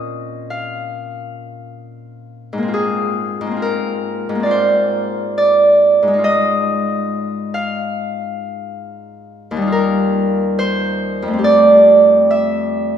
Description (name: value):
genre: classical, solo harp piece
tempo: 69 BPM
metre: 4/4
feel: rubato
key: F dorian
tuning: A4 = 440 Hz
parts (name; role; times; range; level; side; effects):
- Celtic harp; solo; 0.0-13.0 s; Eb2 to F5; -14 LUFS; right 1 dB; none
room: wet church reverb, RT60 2.7 s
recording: recorded in a church or concert hall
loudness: -13 LUFS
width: side -9 dB against mid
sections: 0.0-13.0 A section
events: none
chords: 0.0 Bbmadd9; 2.8 Ab69; 6.2 Fm7/Ab; 9.7 Ebadd9; 11.4 Fadd9